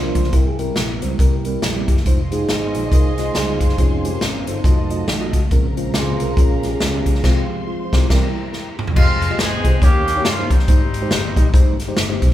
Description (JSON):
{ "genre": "uptempo gospel", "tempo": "139 BPM", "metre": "4/4", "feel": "swing 60% on 8ths", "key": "F minor", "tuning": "A4 = 440 Hz", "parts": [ { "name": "mellow tine electric piano", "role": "accompaniment", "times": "0.0-12.3 s", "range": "Ab2 to Eb5", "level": "-26 LUFS", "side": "left 1 dB", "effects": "medium stereo tremolo" }, { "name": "mellow tonewheel organ", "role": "sustained chords", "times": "0.0-8.8 s", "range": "Db3 to Eb5", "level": "-24 LUFS", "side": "right 2 dB", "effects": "slow rotary speaker" }, { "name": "fingered electric bass", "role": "bass", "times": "0.0-12.3 s", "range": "F1 to G2", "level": "-25 LUFS", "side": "right 1 dB", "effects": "none" }, { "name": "swinging big-band drum kit", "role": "drums", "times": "0.2-12.3 s", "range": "crash cymbal, hi-hat, kick drum, snare drum, toms", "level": "-16 LUFS", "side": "equal", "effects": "none" }, { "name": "warm symphonic string section", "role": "sustained chords", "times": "2.1-9.0 s", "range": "Bb4 to C6", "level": "-33 LUFS", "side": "equal", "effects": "none" }, { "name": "clear horn section", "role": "melody", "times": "9.0-12.0 s", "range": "G3 to Ab4", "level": "-22 LUFS", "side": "equal", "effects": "none" } ], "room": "light reverb", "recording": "band playing live in one room", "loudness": "-15 LUFS", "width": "side -13 dB against mid", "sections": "0.0-9.0 A section; 9.0-12.3 B section", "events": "tonewheel organ solo 0.0-9.0; band accent 7.2-9.0; drum fill 8.5-9.0", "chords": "0.3 C7; 2.1 Fm7; 3.8 Dbmaj7/F; 4.6 F7b9; 5.5 Bbm7; 7.2 Fm/C; 8.1 C7; 9.0 Fm9; 9.8 Eb7; 10.7 Abmaj7", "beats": "| 0.33 0.76 1.19 1.62 | 2.06 2.49 2.92 3.35 | 3.78 4.22 4.65 5.08 | 5.51 5.95 6.38 6.81 | 7.24 7.67 8.10 8.53 | 8.96 9.39 9.82 10.26 | 10.68 11.11 11.54 11.97" }